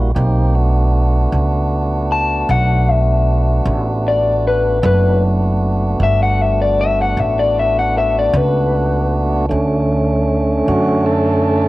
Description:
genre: slow blues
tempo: 51 BPM (dotted quarters)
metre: 12/8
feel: straight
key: B minor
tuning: A4 = 440 Hz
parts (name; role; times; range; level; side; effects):
- electric guitar through a small old amp; melody; 0.0-9.1 s; B4 to A5; -17 LUFS; left 4 dB; none
- tonewheel organ; sustained chords; 0.0-11.7 s; D3 to A4; -18 LUFS; right 1 dB; overdrive, stopped rotary speaker, cassette tape
- upright bass; bass; 0.0-11.7 s; F#1 to F#2; -16 LUFS; right 1 dB; none
room: light reverb, small room ambience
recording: home recording on cassette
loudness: -13 LUFS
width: side -18 dB against mid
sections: 0.0-9.5 A section; 9.5-11.7 A section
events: clean electric guitar solo 0.0-9.5; tonewheel organ solo 9.5-11.7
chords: 0.2 Bm7; 9.5 Bm7 (rootless)

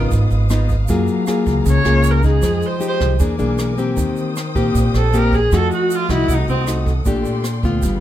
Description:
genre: bossa nova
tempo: 156 BPM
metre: 4/4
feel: straight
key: unclear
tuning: A4 = 440 Hz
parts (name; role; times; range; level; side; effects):
- nylon-string guitar; accompaniment; 0.0-8.0 s; Ab2 to Ab4; -19 LUFS; left 3 dB; none
- warm symphonic string section; sustained chords; 0.0-8.0 s; Ab3 to Eb6; -31 LUFS; equal; none
- upright bass; bass; 0.0-8.0 s; G1 to Gb2; -18 LUFS; right 1 dB; none
- jazz brush drum kit; drums; 0.1-7.9 s; hi-hat, kick drum, rim click; -24 LUFS; right 1 dB; none
- egg shaker; percussion; 0.1-8.0 s; none; -36 LUFS; right 11 dB; none
- warm viola; melody; 1.7-6.6 s; C4 to Db5; -20 LUFS; right 2 dB; none
room: light reverb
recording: none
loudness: -15 LUFS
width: side -12 dB against mid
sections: 0.0-8.0 A section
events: viola solo 0.0-8.0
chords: 0.0 Db9 (rootless); 0.9 Gbmaj9; 2.4 Fm9; 3.2 E7#11; 4.0 Eb6; 5.5 F7b9; 7.1 Bbmaj13

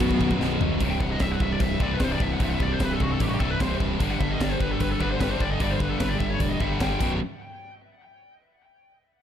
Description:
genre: heavy metal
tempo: 150 BPM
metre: 4/4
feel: straight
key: unclear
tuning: A4 = 440 Hz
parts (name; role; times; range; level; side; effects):
- high-gain lead guitar; melody; 0.0-7.1 s; B3 to G5; -31 LUFS; left 3 dB; distortion, tape echo
- high-gain distorted guitar; riff; 0.0-7.2 s; B1 to G3; -29 LUFS; left 10 dB; distortion
- scooped high-gain guitar; riff; 0.0-7.2 s; B1 to G3; -30 LUFS; right 13 dB; distortion
- thick fuzz guitar; riff; 0.0-0.8 s; B1 to B2; -29 LUFS; equal; distortion
- growling picked electric bass; bass; 0.0-7.2 s; B0 to A1; -29 LUFS; equal; overdrive
- tight metal drum kit; drums; 0.0-7.1 s; crash cymbal, hi-hat, kick drum, snare drum, toms; -28 LUFS; equal; none
room: small room ambience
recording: dark, warm production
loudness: -22 LUFS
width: side -9 dB against mid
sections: 0.8-7.2 A section; 7.2-8.8 B section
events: drum fill 0.4-0.8, 7.0; lead electric guitar solo 0.8-7.2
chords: 0.0 B5; 0.8 C5; 4.0 G5; 7.0 B5; 7.2 N.C.

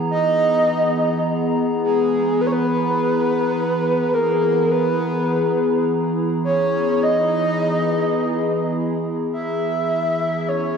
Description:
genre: ambient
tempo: 52 BPM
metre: 4/4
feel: straight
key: unclear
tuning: A4 = 439 Hz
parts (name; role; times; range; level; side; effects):
- warbly tape-like pad; sustained chords; 0.0-10.8 s; E3 to A#5; -20 LUFS; left 1 dB; chorus, built-in reverb
- breathy flute-like synth lead; melody; 0.1-10.8 s; G#4 to E5; -20 LUFS; right 1 dB; lush chorus, ping-pong delay
room: wet concert hall reverb, RT60 2.2 s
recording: none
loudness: -17 LUFS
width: side -6 dB against mid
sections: 0.0-9.3 A section; 9.3-10.8 B section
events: none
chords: 0.0 G#madd9/E

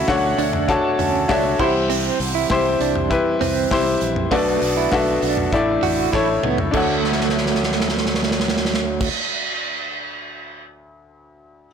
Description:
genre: piano-driven pop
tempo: 99 BPM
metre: 4/4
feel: straight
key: D major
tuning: A4 = 440 Hz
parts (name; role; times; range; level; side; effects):
- clear upright piano; accompaniment; 0.0-11.7 s; D2 to A5; -20 LUFS; left 4 dB; none
- mellow tonewheel organ; sustained chords; 0.0-9.1 s; B2 to F#5; -28 LUFS; right 4 dB; slow rotary speaker
- direct-recorded clean electric guitar; riff; 0.0-9.1 s; A3 to F#4; -24 LUFS; right 12 dB; tremolo
- fingered electric bass; bass; 0.0-9.1 s; A1 to D2; -28 LUFS; equal; transformer saturation
- modern studio drum kit; drums; 0.1-10.6 s; crash cymbal, hi-hat, kick drum, snare drum, toms; -24 LUFS; right 1 dB; none
room: moderate scoring stage reverb, RT60 1.9 s, small room ambience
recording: blown-out, overdriven recording, overdrive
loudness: -17 LUFS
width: side -7 dB against mid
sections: 0.0-6.7 A section; 6.7-9.2 B section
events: upright piano fill 1.0-1.9; drum fill 6.1-6.7, 7.0-9.0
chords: 0.0 Dmaj7; 1.6 C; 4.3 Bm7; 5.5 Asus4; 6.7 Dmaj7

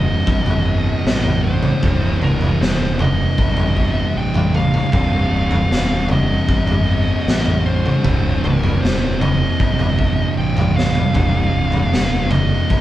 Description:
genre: stoner and doom metal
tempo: 77 BPM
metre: 4/4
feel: straight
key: C dorian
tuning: A4 = 442 Hz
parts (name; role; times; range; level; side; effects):
- fuzz lead guitar; melody; 0.0-12.8 s; Bb4 to G5; -24 LUFS; equal; distortion
- thick fuzz guitar; riff; 0.0-12.8 s; C2 to C3; -20 LUFS; right 1 dB; distortion
- fuzz fingered electric bass; bass; 0.0-12.8 s; C1 to A1; -22 LUFS; equal; overdrive
- raw garage drum kit; drums; 0.3-12.8 s; kick drum, snare drum, toms; -18 LUFS; equal; none
room: light reverb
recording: band playing live in one room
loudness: -14 LUFS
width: side -14 dB against mid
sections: 0.0-12.8 A section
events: drum fill 10.8-11.2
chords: 0.0 Cm

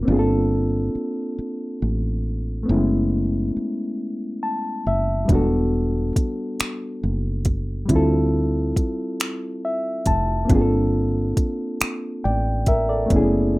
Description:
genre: slow six-eight R&B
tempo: 46 BPM (dotted quarters)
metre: 6/8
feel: straight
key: unclear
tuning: A4 = 440 Hz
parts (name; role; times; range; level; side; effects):
- reed electric piano; accompaniment; 0.0-13.6 s; G3 to A5; -22 LUFS; equal; overdrive, plate reverb
- woody fretless electric bass; bass; 0.0-13.6 s; E1 to D2; -22 LUFS; equal; none
- smooth R&B drum kit; drums; 5.3-13.3 s; finger snaps, hi-hat, kick drum; -21 LUFS; equal; none
room: light reverb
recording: rough home demo mix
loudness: -20 LUFS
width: side -20 dB against mid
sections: 0.0-13.6 A section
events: reed electric piano fill 4.0-5.3, 9.2-10.5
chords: 0.1 Gm11; 2.7 F#m11; 5.3 Em11; 7.9 Dm11; 10.5 Gm11

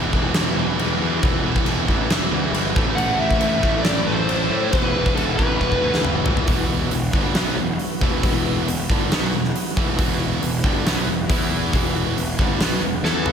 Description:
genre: hard rock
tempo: 137 BPM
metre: 4/4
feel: straight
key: E minor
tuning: A4 = 440 Hz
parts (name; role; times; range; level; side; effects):
- overdriven tonewheel organ; sustained chords; 0.0-13.3 s; E3 to F#5; -34 LUFS; equal; none
- high-gain distorted guitar; riff; 0.0-13.3 s; E2 to E4; -26 LUFS; right 10 dB; distortion
- overdriven semi-hollow guitar; riff; 0.0-13.3 s; E2 to E4; -29 LUFS; left 10 dB; slapback echo
- sludgy distorted guitar; riff; 0.0-13.3 s; E2 to E4; -29 LUFS; equal; overdrive, slapback echo
- fuzz picked electric bass; bass; 0.0-13.3 s; E1 to A2; -25 LUFS; equal; overdrive
- huge arena drum kit; drums; 0.1-13.3 s; crash cymbal, hi-hat, kick drum, snare drum, toms; -21 LUFS; equal; none
- biting lead guitar; melody; 3.0-6.0, 13.0-13.3 s; A4 to F#5; -23 LUFS; equal; overdrive, slapback echo
room: light reverb, small room ambience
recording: none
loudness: -18 LUFS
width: side -7 dB against mid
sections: 0.0-6.5 A section; 6.5-13.3 B section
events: drum fill 5.6-6.5, 13.0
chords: 0.0 Em; 2.8 Am; 4.7 Em

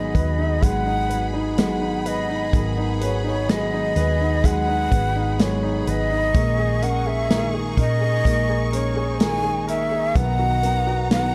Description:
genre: pop ballad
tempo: 63 BPM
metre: 4/4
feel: straight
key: G# minor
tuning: A4 = 440 Hz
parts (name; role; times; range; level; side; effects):
- breathy shakuhachi; melody; 0.0-11.3 s; C#5 to G#5; -27 LUFS; equal; none
- clear upright piano; accompaniment; 0.0-11.3 s; D#3 to B4; -30 LUFS; equal; none
- bright studio string section; sustained chords; 0.0-11.3 s; D#4 to C#6; -36 LUFS; equal; none
- nylon-string guitar; arpeggios; 0.0-11.3 s; G#2 to A#4; -31 LUFS; equal; none
- hollow-body short-scale fingered electric bass; bass; 0.0-11.3 s; G#1 to A#2; -27 LUFS; equal; none
- natural country drum kit; drums; 0.1-11.3 s; hi-hat, kick drum, snare drum; -24 LUFS; equal; none
room: small room ambience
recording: dark, warm production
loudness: -21 LUFS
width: mono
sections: 0.0-11.3 A section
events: none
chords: 0.0 G#m7; 6.3 D#7sus4/A#; 10.2 Bmaj7

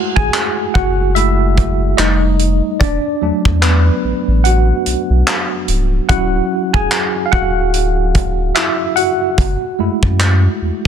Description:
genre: contemporary R&B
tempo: 73 BPM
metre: 4/4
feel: swing 58% on 16ths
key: F# minor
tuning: A4 = 440 Hz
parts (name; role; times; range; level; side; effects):
- tine electric piano; accompaniment; 0.0-10.9 s; F#3 to G#5; -16 LUFS; right 1 dB; overdrive, fast stereo tremolo
- warm sub bass; bass; 0.2-10.7 s; C#1 to F#2; -15 LUFS; equal; none
- modern studio drum kit; drums; 0.2-10.4 s; handclaps, hi-hat, kick drum; -17 LUFS; equal; vintage 12-bit sampler grit
room: small room reverb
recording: dense, heavily limited modern master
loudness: -12 LUFS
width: side -8 dB against mid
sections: 0.0-10.9 A section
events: tine electric piano solo 0.0-10.9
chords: 0.0 F#m9; 2.0 F9; 2.8 E9sus4; 6.1 Dmaj9; 9.4 F#m9

